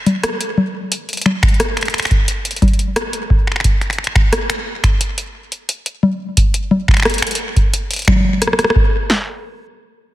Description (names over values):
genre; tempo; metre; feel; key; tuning
IDM; 88 BPM; 4/4; straight; none; none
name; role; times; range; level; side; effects
electro analog drum machine; drums; 0.1-8.8 s; congas, finger snaps, hi-hat, rim click; -17 LUFS; left 1 dB; soft clipping on snare, digital delay
electro analog drum machine; drums; 1.4-9.3 s; kick drum, snare drum; -14 LUFS; equal; none
room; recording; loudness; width
light reverb, digital ambience; dense, heavily limited modern master; -14 LUFS; side -15 dB against mid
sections
0.0-9.1 A section; 9.1-10.1 B section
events
none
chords
none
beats
0.23 | 0.92 1.60 2.28 2.96 | 3.64 4.33 5.01 5.69 | 6.37 7.05 7.74 8.42 | 9.10